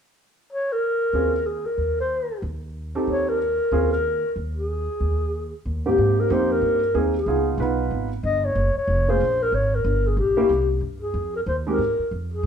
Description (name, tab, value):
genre	jazz, small-group swing and bop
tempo	186 BPM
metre	4/4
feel	swing 62% on 8ths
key	Ab major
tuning	A4 = 438 Hz
part	breathy clarinet	melody	0.5-12.5 s	G4 to Eb5	-23 LUFS	left 1 dB	none
part	warm concert grand piano	accompaniment	1.1-11.8 s	Ab2 to Cb5	-24 LUFS	right 2 dB	none
part	upright bass	bass	1.1-12.5 s	F1 to Bb2	-26 LUFS	equal	none
room	moderate large studio reverb, RT60 0.9 s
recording	band playing live in one room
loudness	-20 LUFS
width	side -8 dB against mid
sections	0.8-6.0 A section; 6.0-12.5 B section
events	none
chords	0.0 N.C.; 0.8 Bbm7; 2.1 Eb6; 3.4 Bbm7; 4.7 Ebsus4; 6.0 Abmaj7; 7.3 Db7; 8.6 Gbmaj9; 9.9 Gdim; 10.5 C5; 11.1 Fm7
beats	0.17 0.49 | 0.82 1.14 1.46 1.78 | 2.10 2.43 2.75 3.07 | 3.40 3.72 4.04 4.36 | 4.69 5.01 5.33 5.66 | 5.98 6.30 6.62 6.95 | 7.27 7.59 7.92 8.24 | 8.56 8.89 9.21 9.53 | 9.86 10.18 10.50 10.82 | 11.15 11.47 11.79 12.11 | 12.44